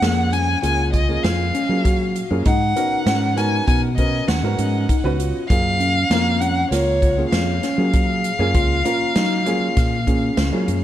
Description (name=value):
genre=progressive instrumental, band music in an uneven meter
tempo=98 BPM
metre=5/4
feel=straight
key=unclear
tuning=A4 = 441 Hz
part: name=warm violin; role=melody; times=0.0-10.8 s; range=C#5 to G#5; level=-22 LUFS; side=left 1 dB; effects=ping-pong delay
part: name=dark baby grand piano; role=accompaniment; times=0.0-10.8 s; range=E#3 to B4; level=-26 LUFS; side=right 1 dB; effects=plate reverb
part: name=tine electric piano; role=arpeggios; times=0.0-10.8 s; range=A#3 to G#4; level=-25 LUFS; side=left 2 dB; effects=medium stereo tremolo, plate reverb
part: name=fingered electric bass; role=bass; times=0.0-10.8 s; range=C#2 to F#3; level=-22 LUFS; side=equal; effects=none
part: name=swinging big-band drum kit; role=drums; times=0.0-10.8 s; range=hi-hat, kick drum, snare drum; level=-22 LUFS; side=equal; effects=none
room=light reverb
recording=dark, warm production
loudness=-16 LUFS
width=side -12 dB against mid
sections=0.0-10.8 A section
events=none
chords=0.0 F#maj9; 2.5 G#m11; 5.5 F#maj9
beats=0.02 0.63 1.24 1.85 | 2.46 3.07 3.68 4.29 4.90 | 5.50 6.11 6.72 7.33 7.94 | 8.55 9.16 9.77 10.38